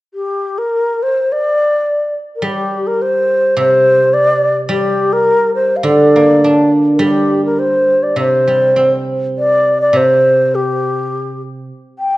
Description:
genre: chinese traditional, Chinese chamber ensemble.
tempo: 104 BPM.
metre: 4/4.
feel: straight.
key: G yu mode.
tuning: A4 = 441 Hz.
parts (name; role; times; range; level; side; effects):
breathy bright low xiao; melody; 0.1-12.2 s; G4 to G5; -13 LUFS; equal; none.
guzheng; accompaniment; 2.4-11.7 s; C3 to D4; -15 LUFS; right 1 dB; none.
room: wet recital hall reverb, RT60 1.6 s.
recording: worn, warbling old tape, cassette tape, warbly pitch drift.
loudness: -11 LUFS.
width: side -18 dB against mid.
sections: 0.1-12.2 A section.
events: none.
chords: none.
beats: | 0.12 0.71 1.29 1.87 | 2.44 3.01 3.58 4.15 | 4.72 5.29 5.87 6.45 | 7.02 7.60 8.19 8.77 | 9.37 9.96 10.54 11.12 | 11.70.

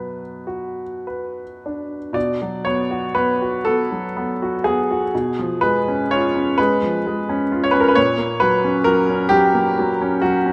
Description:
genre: classical, romantic nocturne for solo piano.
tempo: 33-45 BPM (dotted quarters).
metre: 6/8.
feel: rubato.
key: B minor.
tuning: A4 = 440 Hz.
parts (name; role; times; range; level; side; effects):
clear baby grand piano; solo; 0.0-10.5 s; A#2 to D5; -20 LUFS; equal; none.
room: moderate concert hall reverb, RT60 1.8 s.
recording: none.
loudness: -19 LUFS.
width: mono.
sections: 0.0-2.1 A section; 2.1-10.5 B section.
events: none.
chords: 0.0 Bm; 2.1 B5; 5.1 C#7/B; 8.0 F#/A#.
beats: 0.44 | 2.15 3.65 | 5.12 6.58 | 7.96 9.32.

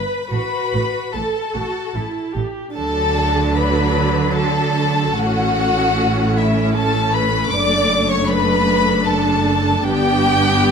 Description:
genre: classical, slow romantic movement for string orchestra.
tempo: 75 BPM.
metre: 3/4.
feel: rubato.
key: D major.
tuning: A4 = 440 Hz.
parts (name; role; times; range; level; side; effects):
warm chamber violin section; melody; 0.0-10.7 s; E5 to D6; -21 LUFS; left 4 dB; none.
rich chamber violin section; second line; 0.0-10.7 s; E4 to D5; -22 LUFS; left 1 dB; none.
rich studio viola section; accompaniment; 0.0-10.7 s; F#3 to B4; -21 LUFS; equal; none.
rich chamber double bass section; bass; 0.3-10.7 s; F#1 to D2; -23 LUFS; right 3 dB; none.
rich studio cello section; bass; 0.3-10.7 s; F#2 to D3; -24 LUFS; right 3 dB; none.
room: moderate scoring stage reverb, RT60 1.8 s.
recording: close, detailed microphones.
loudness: -15 LUFS.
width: side -6 dB against mid.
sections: 0.0-2.8 A section; 2.8-10.7 B section.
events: none.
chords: 0.3 F#madd11/A; 1.9 A5; 2.8 D; 5.2 A; 7.5 D/F#; 9.9 G.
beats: | 0.31 1.14 1.95 | 2.76 3.57 4.37 | 5.17 5.97 6.75 | 7.52 8.30 9.08 | 9.85 10.63.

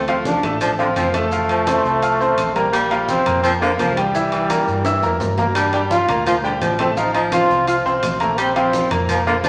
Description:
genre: latin, salsa.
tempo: 170 BPM.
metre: 4/4.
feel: straight.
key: F major.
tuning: A4 = 440 Hz.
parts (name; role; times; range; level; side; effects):
bright trombone; melody; 0.0-9.5 s; G3 to F4; -22 LUFS; equal; none.
clear baritone saxophone; second line; 0.0-9.5 s; D3 to A3; -25 LUFS; equal; none.
hollow-body short-scale fingered electric bass; bass; 0.0-9.5 s; F1 to G2; -30 LUFS; equal; none.
bright concert grand piano; accompaniment; 0.1-9.5 s; E3 to F6; -24 LUFS; equal; none.
congas; percussion; 0.1-9.5 s; none; -32 LUFS; equal; none.
maracas; percussion; 0.1-9.5 s; none; -40 LUFS; equal; none.
timbales; percussion; 0.1-9.5 s; none; -33 LUFS; equal; none.
room: wet large studio reverb, RT60 1.3 s.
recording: none.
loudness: -18 LUFS.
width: mono.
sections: 0.0-9.5 A section.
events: drum fill 4.9-5.6.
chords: 0.0 Dm; 1.3 F; 2.7 Bb5; 4.1 C7; 5.6 Gm7; 7.0 F/A; 8.4 Bb5.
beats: 0.26 0.61 0.96 | 1.32 1.67 2.02 2.38 | 2.73 3.08 3.44 3.79 | 4.14 4.50 4.85 5.20 | 5.56 5.91 6.26 6.62 | 6.97 7.32 7.67 8.03 | 8.38 8.73 9.09 9.44.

